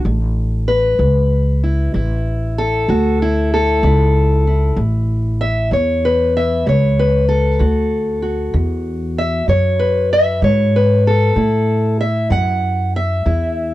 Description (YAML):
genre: acoustic country blues, solo or duo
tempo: 64 BPM (dotted quarters)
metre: 12/8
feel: straight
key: A major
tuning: A4 = 440 Hz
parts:
  - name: fingerpicked steel-string acoustic guitar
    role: melody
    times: 0.0-13.7 s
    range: A2 to F#5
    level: -17 LUFS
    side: left 1 dB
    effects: none
  - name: upright bass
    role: bass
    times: 0.0-13.7 s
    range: A1 to A2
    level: -16 LUFS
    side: equal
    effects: none
room: little or no reverb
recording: dry, close 1970s-style studio recording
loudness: -14 LUFS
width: side -15 dB against mid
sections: 0.0-13.7 A section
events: none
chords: 0.0 A; 7.6 D; 11.4 A5